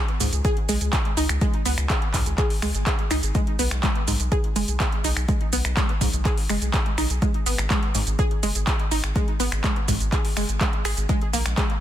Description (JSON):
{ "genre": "progressive house", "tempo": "124 BPM", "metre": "4/4", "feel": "straight", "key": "G# minor", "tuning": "A4 = 440 Hz", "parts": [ { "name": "deep house drum kit", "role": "drums", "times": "0.1-11.8 s", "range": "finger snaps, handclaps, hi-hat, shaker", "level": "-27 LUFS", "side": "right 1 dB", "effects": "overdrive, small room ambience" }, { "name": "wide unison pluck", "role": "arpeggios", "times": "0.2-11.6 s", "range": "G#2 to G#4", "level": "-28 LUFS", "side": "right 1 dB", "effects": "wide subtle chorus, sidechain pumping, dub echo" }, { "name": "saturated sub bass", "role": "bass", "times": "0.2-11.5 s", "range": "F#1 to C#2", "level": "-25 LUFS", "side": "equal", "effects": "sidechain pumping" }, { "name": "electronic kick drum", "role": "drums", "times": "0.4-11.7 s", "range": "none", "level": "-24 LUFS", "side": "equal", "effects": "overdrive, small room ambience" } ], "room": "digital ambience", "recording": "dense, heavily limited modern master", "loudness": "-20 LUFS", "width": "side -11 dB against mid", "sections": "0.0-11.8 A section", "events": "none", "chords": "0.0 C#5; 3.4 G#m; 11.1 G#sus2" }